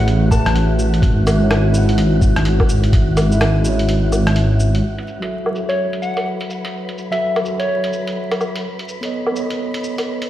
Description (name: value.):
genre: future garage.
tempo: 126 BPM.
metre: 4/4.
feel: swing 61% on 16ths.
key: F# minor.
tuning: A4 = 440 Hz.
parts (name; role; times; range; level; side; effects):
soft struck synth lead; melody; 0.0-0.5, 5.7-8.1 s; C#5 to A5; -24 LUFS; left 1 dB; chorus, analog delay.
mellow tine electric piano; accompaniment; 0.0-10.3 s; F#3 to F#5; -23 LUFS; right 1 dB; medium stereo tremolo, sidechain pumping, low-pass filter, tape echo.
warbly tape-like pad; sustained chords; 0.0-10.3 s; C#4 to E5; -27 LUFS; left 2 dB; chorus, built-in reverb, vintage 12-bit sampler grit, sidechain pumping.
dark detuned saw bass; bass; 0.0-4.8 s; G#1 to A1; -15 LUFS; equal; tube saturation, sidechain pumping.
wind-like tuned noise texture; texture; 0.0-10.3 s; F#4 to B4; -32 LUFS; right 1 dB; built-in reverb.
lo-fi sampler-style drum kit; drums; 0.1-10.3 s; cabasa, hi-hat, rim click, woodblock; -24 LUFS; equal; low-pass filter on perc, small room ambience, low-pass filter on snare, low-pass filter on hats.
electronic kick drum; drums; 0.3-3.0 s; none; -16 LUFS; equal; small room ambience.
room: little or no reverb.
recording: played on a big sound system in a bare room, stone room reverb, vinyl crackle.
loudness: -15 LUFS.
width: side -13 dB against mid.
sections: 0.0-4.8 A section; 4.8-10.3 B section.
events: kick drops out 3.9-4.8.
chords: 0.0 Amaj9; 1.0 E6/G#; 4.8 F#m7; 8.6 B9.